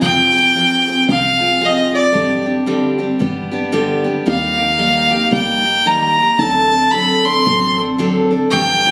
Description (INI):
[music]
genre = acoustic folk duo or small band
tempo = 113 BPM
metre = 4/4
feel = swing 61% on 8ths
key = unclear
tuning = A4 = 440 Hz
[part]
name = clear fiddle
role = melody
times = 0.0-8.9 s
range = D5 to C6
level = -16 LUFS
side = equal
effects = plate reverb
[part]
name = picked steel-string acoustic guitar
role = accompaniment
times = 0.0-8.9 s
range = G2 to A4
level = -20 LUFS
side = equal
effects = none
[part]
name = woody FM bass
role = bass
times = 0.0-8.9 s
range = F1 to Eb2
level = -26 LUFS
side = equal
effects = none
[sound]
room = moderate large studio reverb, RT60 0.9 s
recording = recorded on a phone in the room, club reverb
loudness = -15 LUFS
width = mono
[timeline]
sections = 0.0-8.9 A section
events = none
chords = 0.0 Fm; 2.1 Gsus4; 3.2 G; 4.3 Eb; 6.4 D7